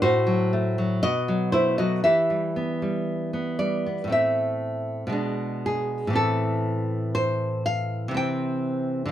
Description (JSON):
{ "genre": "romantic piece for solo classical guitar", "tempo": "60 BPM", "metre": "2/4", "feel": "rubato", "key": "E minor, A minor from 4.1 s", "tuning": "A4 = 441 Hz", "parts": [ { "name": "nylon-string guitar", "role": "solo", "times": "0.0-9.1 s", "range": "A2 to G5", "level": "-22 LUFS", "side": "equal", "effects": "none" } ], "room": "light reverb", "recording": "band playing live in one room", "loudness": "-22 LUFS", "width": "side -11 dB against mid", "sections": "0.0-4.1 A section; 4.1-9.1 B section", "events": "none", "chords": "0.0 F#dim/A; 1.0 B7; 2.1 Em; 4.1 Am; 5.2 E7/B; 6.2 Am; 8.2 C" }